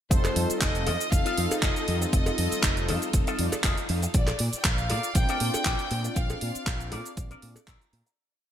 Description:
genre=nu-disco, nu disco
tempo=119 BPM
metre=4/4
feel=swing 54% on 16ths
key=F mixolydian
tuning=A4 = 440 Hz
part: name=warm studio violin section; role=melody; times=0.1-7.2 s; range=C5 to G5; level=-32 LUFS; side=left 1 dB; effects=digital delay
part: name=mellow synth brass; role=accompaniment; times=0.1-7.6 s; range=G3 to D5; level=-33 LUFS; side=left 1 dB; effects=chorus, sidechain pumping
part: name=string machine, full ensemble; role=sustained chords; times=0.1-8.1 s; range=Eb4 to D5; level=-38 LUFS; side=equal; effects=ensemble chorus, sidechain pumping
part: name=electric guitar with an envelope filter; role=riff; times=0.1-8.1 s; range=F4 to Bb5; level=-36 LUFS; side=left 4 dB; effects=wide subtle chorus
part: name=fingered electric bass with an envelope filter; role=bass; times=0.1-8.0 s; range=F1 to Bb2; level=-30 LUFS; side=equal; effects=none
part: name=electronic kick drum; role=drums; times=0.1-7.8 s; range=none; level=-26 LUFS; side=equal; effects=none
part: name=house drum kit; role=drums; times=0.1-8.2 s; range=cabasa, handclaps, hi-hat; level=-30 LUFS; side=right 1 dB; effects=gated reverb
part: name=cowbell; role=percussion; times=0.2-7.7 s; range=none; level=-37 LUFS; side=equal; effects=none
room=light reverb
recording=bright 1980s-style digital production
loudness=-24 LUFS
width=side -10 dB against mid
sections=0.1-8.2 drop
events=drop 0.1-8.2; fade-out 5.5-8.2; clean electric guitar fill 7.2-8.2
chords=0.1 F7; 4.1 Bbmaj7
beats=| 0.11 0.61 1.12 1.62 | 2.13 2.63 3.14 3.64 | 4.14 4.65 5.15 5.66 | 6.16 6.67 7.17 7.67

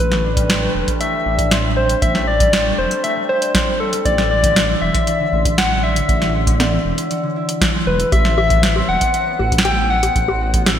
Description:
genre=IDM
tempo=118 BPM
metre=4/4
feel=straight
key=A dorian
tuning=A4 = 443 Hz
part: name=soft struck synth lead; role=melody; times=0.0-10.8 s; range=A4 to G5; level=-19 LUFS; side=left 2 dB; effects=chorus, ping-pong delay
part: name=concert harp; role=arpeggios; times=0.0-10.8 s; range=D3 to F#4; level=-23 LUFS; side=right 1 dB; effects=low-pass filter, digital delay
part: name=dark detuned saw bass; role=bass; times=0.0-10.8 s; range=E1 to A1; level=-21 LUFS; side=equal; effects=none
part: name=booming analog drum machine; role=drums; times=0.1-10.8 s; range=bongos, hi-hat, snare drum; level=-20 LUFS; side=equal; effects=overdrive, gated reverb
part: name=electronic kick drum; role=drums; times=0.4-10.6 s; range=none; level=-21 LUFS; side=equal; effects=overdrive
room=moderate lush hall reverb, RT60 1.9 s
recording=bright 1980s-style digital production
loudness=-14 LUFS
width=side -9 dB against mid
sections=0.0-10.8 A section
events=filter sweep on harp 0.0-10.8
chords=0.0 Amadd9; 4.1 E7; 8.1 Cmaj7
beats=0.49 1.00 1.51 | 2.02 2.53 3.04 3.55 | 4.05 4.56 5.07 5.58 | 6.09 6.60 7.11 7.61 | 8.12 8.63 9.14 9.65 | 10.16 10.66

